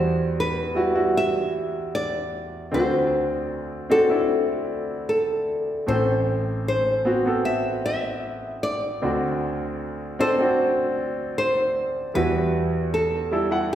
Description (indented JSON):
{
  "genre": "pop",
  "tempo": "77 BPM",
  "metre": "4/4",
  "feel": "straight",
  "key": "unclear",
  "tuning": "A4 = 440 Hz",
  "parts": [
    { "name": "nylon-string guitar", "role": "melody", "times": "0.0-13.8 s", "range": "A4 to E5", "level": "-24 LUFS", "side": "left 1 dB", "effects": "none" },
    { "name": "clear concert grand piano", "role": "accompaniment", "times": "0.0-13.8 s", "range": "A1 to F#5", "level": "-24 LUFS", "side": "right 1 dB", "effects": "none" }
  ],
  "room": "wet recital hall reverb, RT60 1.7 s",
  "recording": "recorded in a church or concert hall",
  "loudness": "-21 LUFS",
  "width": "side -11 dB against mid",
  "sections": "0.0-13.8 A section",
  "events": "none",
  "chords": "0.0 Emadd9; 2.7 D7; 5.9 Amadd9; 9.0 D7; 12.1 Emadd9"
}